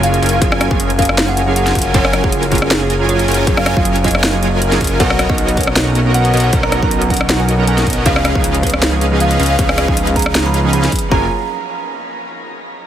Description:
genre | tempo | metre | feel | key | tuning
future bass | 157 BPM | 4/4 | swing 54% on 16ths, half-time | F# major | A4 = 438 Hz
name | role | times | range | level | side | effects
buzzing kalimba | melody | 0.0-11.3 s | G#4 to B5 | -21 LUFS | equal | sidechain pumping, tape echo
glassy digital keys | accompaniment | 0.0-11.3 s | E#3 to A#4 | -21 LUFS | right 5 dB | chorus, vintage 12-bit sampler grit, sidechain pumping
big bright polysynth | riff | 0.0-11.3 s | F#3 to G#5 | -19 LUFS | equal | sidechain pumping
fat analog bass | bass | 0.0-11.3 s | F#1 to C#2 | -17 LUFS | equal | sidechain pumping
trap drum kit | drums | 0.0-11.1 s | hi-hat, rim click, snare drum | -19 LUFS | equal | overdrive, studio reverb
electronic kick drum | drums | 0.4-11.2 s | none | -18 LUFS | equal | studio reverb
room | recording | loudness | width
light reverb, digital ambience | heavily compressed radio sound | -12 LUFS | side -10 dB against mid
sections
0.0-11.1 A section; 11.1-12.6 B section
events
drop 0.0-11.1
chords
0.0 F#maj7; 5.0 Bmaj7; 8.1 C#7; 11.1 F#maj7

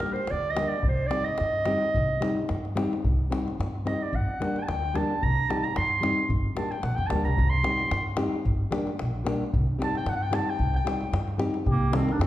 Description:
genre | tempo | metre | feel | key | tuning
balkan folk, Balkan wedding band | 111 BPM | 2/4 | swing 55% on 16ths | C dorian sharp4 | A4 = 444 Hz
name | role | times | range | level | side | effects
warm clarinet | melody | 0.0-12.3 s | Bb3 to C6 | -28 LUFS | right 2 dB | none
nylon-string guitar | accompaniment | 0.0-12.1 s | Eb3 to G4 | -30 LUFS | left 2 dB | none
davul | percussion | 0.0-12.3 s | none | -31 LUFS | left 1 dB | none
upright bass | bass | 0.3-12.3 s | G1 to G2 | -29 LUFS | equal | none
dark trumpet | second line | 11.7-12.3 s | G4 to Bb4 | -34 LUFS | left 1 dB | none
room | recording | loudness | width
wet recital hall reverb, RT60 1.5 s | heard from further back in the room | -24 LUFS | side -14 dB against mid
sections
0.0-11.7 A section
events
speeding up 0.0-12.3; clarinet solo 0.0-11.7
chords
0.0 Gm; 0.8 Cm; 4.1 Gm; 5.2 Cm; 6.3 Gm; 7.4 Cm; 8.5 Gm; 9.5 Cm

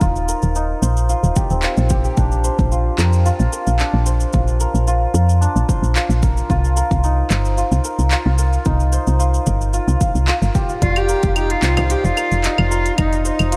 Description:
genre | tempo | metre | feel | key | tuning
organic downtempo | 111 BPM | 4/4 | straight | unclear | A4 = 440 Hz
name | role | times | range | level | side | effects
santur | arpeggios | 0.0-13.6 s | C4 to F5 | -25 LUFS | equal | low-pass filter, digital delay
woody FM bass | bass | 0.0-13.6 s | Eb1 to F2 | -19 LUFS | equal | tube saturation
electronic kick drum | drums | 0.0-13.1 s | none | -22 LUFS | equal | overdrive
organic electronic drum kit | drums | 0.0-13.6 s | cabasa, claves, handclaps, hi-hat | -28 LUFS | equal | none
dark cello | melody | 10.8-13.6 s | Eb4 to G4 | -23 LUFS | equal | none
bronze singing bowl | texture | 10.8-13.6 s | D5 | -36 LUFS | equal | none
frame drum | percussion | 11.8-11.9 s | none | -27 LUFS | equal | none
room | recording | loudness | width
small room reverb | none | -17 LUFS | mono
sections
0.0-13.6 A section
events
none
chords
0.0 Eb6; 2.2 Bb; 6.5 Cm; 10.8 F5

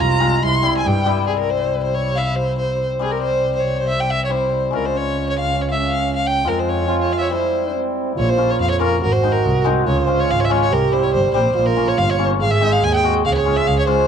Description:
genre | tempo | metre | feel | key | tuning
klezmer | 140 BPM | 2/4 | straight | C phrygian dominant | A4 = 440 Hz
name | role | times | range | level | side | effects
warm violin | melody | 0.0-14.1 s | Ab4 to C6 | -20 LUFS | equal | none
mellow trombone | second line | 0.0-1.0, 4.7-14.1 s | C4 to Ab4 | -22 LUFS | right 11 dB | none
hammered dulcimer | accompaniment | 0.0-14.1 s | G3 to G4 | -24 LUFS | left 13 dB | none
warm double bass | bass | 0.0-13.9 s | G1 to G2 | -21 LUFS | equal | none
room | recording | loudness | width
moderate spring reverb, RT60 1.5 s, small room ambience | 1960s-style stereo with parts hard left and right | -16 LUFS | side -7 dB against mid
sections
0.0-1.3 A section; 1.3-8.2 B section; 8.2-14.1 C section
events
violin solo 0.0-1.3; break 7.3-8.2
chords
0.4 C; 4.7 Db; 6.4 Fm; 7.3 C; 8.2 Bbm; 9.0 Ab7; 9.9 Db; 10.7 C; 11.6 Bbm; 12.4 Ab; 13.2 Db

